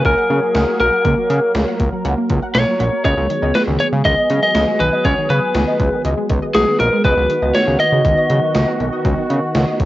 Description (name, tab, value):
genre	synth-pop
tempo	120 BPM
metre	4/4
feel	straight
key	unclear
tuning	A4 = 441 Hz
part	lightly driven lead guitar	melody	0.0-9.9 s	Ab4 to Eb5	-17 LUFS	left 1 dB	cassette tape, analog delay
part	sweeping resonant pad	sustained chords	0.0-9.9 s	Eb3 to Bb4	-22 LUFS	right 1 dB	lush chorus, cassette tape
part	wide unison pluck	arpeggios	0.0-9.9 s	Eb3 to Gb5	-24 LUFS	equal	ensemble chorus, cassette tape, analog delay
part	fat analog bass	bass	0.0-9.9 s	Bb1 to Db3	-18 LUFS	equal	none
part	gated 80s digital drum machine	drums	0.0-9.9 s	hi-hat, kick drum, snare drum	-21 LUFS	equal	gated reverb, gated reverb snare, overdrive, cassette tape
room	moderate booth ambience, RT60 0.2 s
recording	home recording on cassette, nothing above 7.7 kHz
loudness	-14 LUFS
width	side -16 dB against mid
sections	0.0-9.9 A section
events	none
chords	0.0 Gbadd9; 3.0 Abm7; 7.0 Cb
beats	0.05 0.55 | 1.05 1.55 2.05 2.55 | 3.05 3.55 4.05 4.55 | 5.05 5.55 6.05 6.55 | 7.05 7.55 8.05 8.55 | 9.05 9.55